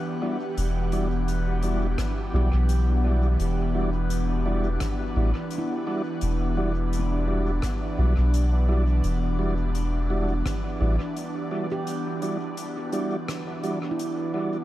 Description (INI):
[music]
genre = ambient dub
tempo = 85 BPM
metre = 4/4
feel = swing 55% on 16ths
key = E minor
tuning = A4 = 439 Hz
[part]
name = airy breathy pad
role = sustained chords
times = 0.0-14.6 s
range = E3 to F#5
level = -30 LUFS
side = equal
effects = chorus, phaser
[part]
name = handpan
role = arpeggios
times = 0.0-14.6 s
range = D4 to G4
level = -36 LUFS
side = right 2 dB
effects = diffuse ambient delay
[part]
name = mellow tonewheel organ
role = stabs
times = 0.2-14.6 s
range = G3 to D5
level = -32 LUFS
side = right 1 dB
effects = overdrive, fast rotary speaker, dub echo
[part]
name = soft dub sub bass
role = bass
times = 0.6-11.0 s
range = E1 to B1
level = -23 LUFS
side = equal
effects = none
[part]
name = soft-mallet drum kit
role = drums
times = 0.6-14.1 s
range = hi-hat, rim click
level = -42 LUFS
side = left 2 dB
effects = dub echo
[part]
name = electronic kick drum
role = drums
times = 2.0-10.6 s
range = none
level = -32 LUFS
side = equal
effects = none
[sound]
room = light reverb, small room ambience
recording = none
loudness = -23 LUFS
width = side -14 dB against mid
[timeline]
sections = 0.0-14.6 A section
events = break 11.9-14.6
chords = 0.0 Em9